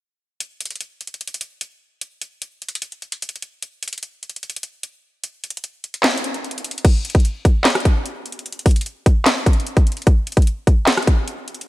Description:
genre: hip hop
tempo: 149 BPM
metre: 4/4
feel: half-time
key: none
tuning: none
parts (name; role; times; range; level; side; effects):
- trap drum kit; drums; 0.4-11.7 s; crash cymbal, handclaps, hi-hat, kick drum, rim click, snare drum; -17 LUFS; equal; vintage 12-bit sampler grit
room: light reverb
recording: none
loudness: -17 LUFS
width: side -17 dB against mid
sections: 0.4-6.8 A section; 6.8-11.7 B section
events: none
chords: none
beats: | 0.40 0.81 1.21 1.61 | 2.01 2.42 2.82 3.22 | 3.62 4.03 4.43 4.83 | 5.24 5.64 6.04 6.44 | 6.85 7.25 7.65 8.05 | 8.46 8.86 9.26 9.66 | 10.07 10.47 10.87 11.28

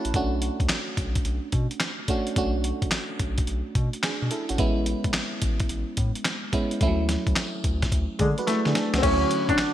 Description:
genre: R&B, new jack swing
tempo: 108 BPM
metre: 4/4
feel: swing 66% on 16ths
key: B dorian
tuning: A4 = 440 Hz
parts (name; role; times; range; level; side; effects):
- FM electric piano; accompaniment; 0.0-9.7 s; E#3 to B5; -29 LUFS; right 2 dB; chorus
- dusty soul sampler-style drum kit; drums; 0.0-9.7 s; crash cymbal, handclaps, hi-hat, kick drum, snare drum; -26 LUFS; equal; none
- round analog bass; bass; 0.1-9.6 s; G#1 to D3; -28 LUFS; equal; none
- warm baby grand piano; melody; 8.2-9.7 s; G#3 to D4; -23 LUFS; left 1 dB; analog chorus
- chorused pulse-width pad; sustained chords; 9.0-9.7 s; D3 to F#5; -32 LUFS; right 1 dB; wide subtle chorus
room: light reverb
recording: bright 1980s-style digital production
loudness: -23 LUFS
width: side -12 dB against mid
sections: 0.0-9.0 A section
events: drum fill 8.5-9.0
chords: 0.1 Bm9; 4.6 Amaj9; 6.8 Dmaj7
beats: | 0.14 0.70 1.25 1.81 | 2.37 2.92 3.48 4.03 | 4.59 5.14 5.70 6.25 | 6.81 7.37 7.92 8.48 | 9.03 9.59

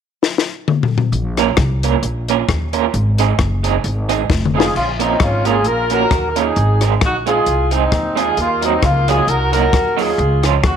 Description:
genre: ska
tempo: 132 BPM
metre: 4/4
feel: swing 55% on 8ths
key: Bb minor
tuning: A4 = 441 Hz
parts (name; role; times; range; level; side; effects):
- compact cocktail drum kit; drums; 0.2-10.8 s; crash cymbal, hi-hat, kick drum, rim click, snare drum, toms; -18 LUFS; left 4 dB; none
- upright bass; bass; 1.1-10.8 s; F1 to Eb2; -19 LUFS; equal; none
- electric guitar through a small old amp; accompaniment; 1.4-10.5 s; F3 to Bb4; -20 LUFS; right 13 dB; tremolo, slapback echo
- mellow horn section; melody; 4.6-10.8 s; Bb3 to Bb4; -17 LUFS; equal; slapback echo
room: light reverb, small room ambience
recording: 1960s-style stereo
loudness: -14 LUFS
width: side -8 dB against mid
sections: 0.0-1.1 A section; 1.1-4.7 B section; 4.7-10.8 C section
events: drum fill 0.2-1.1, 4.3-4.7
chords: 0.0 N.C.; 1.1 Bbm; 2.9 Ab; 4.7 Bbm; 6.6 Ab; 8.4 Ebm; 10.2 Db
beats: 0.23 0.68 | 1.13 1.58 2.03 2.48 | 2.94 3.39 3.84 4.29 | 4.75 5.20 5.65 6.11 | 6.56 7.01 7.46 7.92 | 8.37 8.82 9.28 9.73 | 10.19 10.64

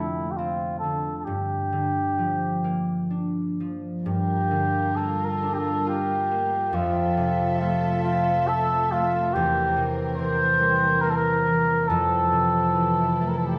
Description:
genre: celtic folk, Celtic slow air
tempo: 62-73 BPM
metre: 3/4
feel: rubato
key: G dorian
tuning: A4 = 440 Hz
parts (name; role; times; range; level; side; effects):
- trumpet with cup mute; melody; 0.0-13.6 s; E4 to C5; -26 LUFS; equal; none
- concert harp; accompaniment; 0.0-13.6 s; E2 to E5; -28 LUFS; equal; none
- dark studio string section; sustained chords; 4.0-13.6 s; E3 to E5; -34 LUFS; equal; none
room: wet scoring stage reverb, RT60 1.7 s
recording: recorded in a church or concert hall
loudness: -24 LUFS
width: mono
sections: 0.0-4.1 A section; 4.1-13.6 A section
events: none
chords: 0.0 F6; 1.3 Gm7; 6.7 Fmaj7; 9.4 C7/E; 11.9 Fmaj7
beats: 0.39 | 1.27 2.17 3.10 | 4.05 4.97 5.87 | 6.75 7.61 8.49 | 9.35 10.18 11.02 | 11.88 12.75

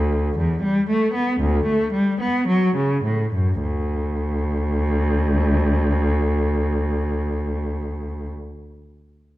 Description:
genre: classical, baroque-style suite movement for unaccompanied cello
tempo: 51-61 BPM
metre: 4/4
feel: rubato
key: D major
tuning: A4 = 441 Hz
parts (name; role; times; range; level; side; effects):
- rich cello; solo; 0.0-8.3 s; D2 to B3; -19 LUFS; equal; none
room: moderate recital hall reverb, RT60 1.6 s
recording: dark, warm production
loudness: -19 LUFS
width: side -16 dB against mid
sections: 0.0-3.6 A section; 3.6-8.0 B section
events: slowing down 0.0-3.6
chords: none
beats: 0.38 1.40 2.47 | 3.61 4.70 5.79 6.88

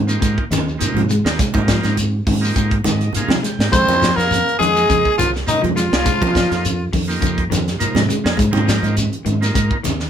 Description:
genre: afrobeat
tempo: 103 BPM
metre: 4/4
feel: swing 53% on 16ths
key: F minor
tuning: A4 = 443 Hz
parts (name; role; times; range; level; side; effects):
- clean electric guitar; arpeggios; 0.0-10.0 s; C3 to Ab3; -25 LUFS; left 4 dB; none
- fingered electric bass; bass; 0.0-10.1 s; C2 to F3; -20 LUFS; equal; none
- combo organ; accompaniment; 0.1-9.8 s; F3 to G5; -24 LUFS; right 3 dB; none
- tight funk drum kit; drums; 0.1-10.1 s; hi-hat, kick drum, snare drum; -21 LUFS; right 1 dB; none
- shekere; percussion; 0.1-10.1 s; none; -26 LUFS; left 3 dB; none
- congas; percussion; 0.5-10.0 s; none; -24 LUFS; right 4 dB; none
- raspy tenor saxophone; melody; 3.7-6.9 s; Eb4 to C5; -18 LUFS; left 3 dB; none
- clear alto saxophone; second line; 3.7-6.9 s; Eb4 to C5; -24 LUFS; right 4 dB; none
- growling bass trombone; second line; 3.7-6.9 s; Eb3 to C4; -25 LUFS; right 2 dB; none
room: moderate small room reverb, RT60 0.6 s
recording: band playing live in one room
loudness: -15 LUFS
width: side -9 dB against mid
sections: 0.0-10.1 A section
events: transistor combo organ fill 2.6-3.7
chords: 0.0 Abmaj7; 3.7 Fm7; 8.4 Abmaj7(no3)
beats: 0.22 0.80 | 1.39 1.97 2.56 3.14 | 3.72 4.30 4.89 5.47 | 6.05 6.64 7.22 7.80 | 8.38 8.97 9.55

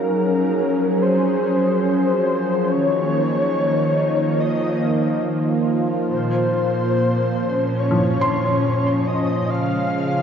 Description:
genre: ambient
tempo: 71 BPM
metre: 4/4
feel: straight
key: unclear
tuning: A4 = 440 Hz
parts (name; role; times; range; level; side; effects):
- breathy flute-like synth lead; melody; 0.0-10.2 s; Bb4 to F5; -22 LUFS; left 1 dB; ensemble chorus, tape echo
- warm analog pad; sustained chords; 0.0-10.2 s; Bb2 to Gb5; -20 LUFS; equal; chorus
- pedal harmonium; drone; 0.0-10.2 s; F3; -28 LUFS; left 1 dB; none
- felt-muted upright piano; arpeggios; 7.9-10.2 s; F3 to C6; -24 LUFS; equal; tape echo
room: wet cathedral reverb, RT60 5.5 s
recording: dark, warm production, nothing above 7.5 kHz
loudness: -17 LUFS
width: side -7 dB against mid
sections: 0.0-10.2 A section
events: none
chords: 0.0 Gbmaj7; 2.7 Eb5; 6.1 Bbm; 9.5 Db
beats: 0.17 1.02 1.87 | 2.72 3.56 4.40 5.24 | 6.08 6.93 7.79 8.64 | 9.50

